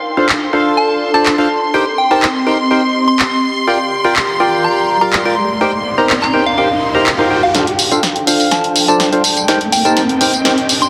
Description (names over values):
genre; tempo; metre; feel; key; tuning
piano house; 124 BPM; 4/4; straight; unclear; A4 = 440 Hz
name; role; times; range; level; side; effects
rich studio violin section; sustained chords; 0.0-10.9 s; G5 to C6; -24 LUFS; equal; low-pass filter
warbly tape-like pad; texture; 0.0-10.9 s; C4 to Bb5; -22 LUFS; equal; chorus, built-in reverb
percussive organ stab; riff; 0.2-10.6 s; D4 to Bb5; -18 LUFS; equal; lush chorus
punchy analog drum machine; drums; 0.3-10.9 s; handclaps, hi-hat, snare drum, tambourine; -18 LUFS; equal; high-pass filter on snare, high-pass filter on hats, high-pass filter on perc
soft synth bell; melody; 0.8-10.9 s; F5 to C6; -20 LUFS; equal; chorus, phaser, low-pass filter, dub echo
riser; sound effects; 4.5-10.9 s; none; -24 LUFS; equal; none
room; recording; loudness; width
moderate lush hall reverb, RT60 1.6 s, digital ambience; dense, heavily limited modern master; -13 LUFS; mono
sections
0.0-7.5 A section; 7.5-10.9 B section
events
riser 4.5-7.5, 7.5-10.9; build-up 7.5-10.9; drum fill 7.5-10.9; filter sweep on violin section 7.5-10.9; filter sweep on synth bell 7.5-10.9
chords
0.0 Dm7; 1.7 Cm7; 3.7 Gm7; 5.6 Eb6; 7.5 Dm7; 9.5 Cm7